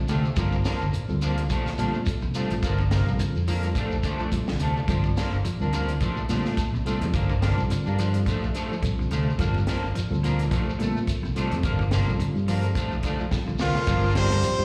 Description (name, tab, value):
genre	afrobeat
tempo	107 BPM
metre	4/4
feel	swing 56% on 16ths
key	G minor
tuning	A4 = 440 Hz
part	mellow reed electric piano	accompaniment	0.0-14.6 s	G3 to G5	-35 LUFS	equal	tremolo
part	clean electric guitar	arpeggios	0.0-14.6 s	Bb2 to F3	-35 LUFS	equal	none
part	fingered electric bass	bass	0.0-14.6 s	G1 to Bb2	-28 LUFS	equal	none
part	electric guitar at the edge of break-up	stabs	0.1-14.4 s	F3 to D4	-33 LUFS	equal	ensemble chorus, slapback echo
part	compact cocktail drum kit	drums	0.1-14.6 s	hi-hat, kick drum, snare drum	-32 LUFS	equal	none
part	shekere	percussion	0.1-14.6 s	none	-37 LUFS	equal	none
part	brilliant trumpet	melody	13.6-14.6 s	F4 to C5	-28 LUFS	equal	none
part	breathy tenor saxophone	second line	13.6-14.6 s	Bb2 to G3	-33 LUFS	equal	none
room	light reverb, small room ambience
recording	live gig heard through the venue's PA, recital hall reverb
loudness	-25 LUFS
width	mono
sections	0.0-13.9 A section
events	reed electric piano fill 0.0-0.4, 12.8-13.9; drum fill 13.3-13.9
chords	0.4 Gm7; 1.5 Bbmaj7; 2.6 Gm7; 3.8 Bbmaj7; 4.9 Gm7; 6.0 Bbmaj7; 7.1 Gm7; 8.3 Bbmaj7; 9.4 Gm7; 10.5 Bbmaj7; 11.6 Gm7; 12.8 Bbmaj7; 13.9 Gm7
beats	| 0.37 0.94 1.50 2.07 | 2.63 3.20 3.76 4.33 | 4.89 5.45 6.02 6.58 | 7.14 7.71 8.27 8.83 | 9.39 9.96 10.52 11.08 | 11.64 12.20 12.76 13.32 | 13.88 14.44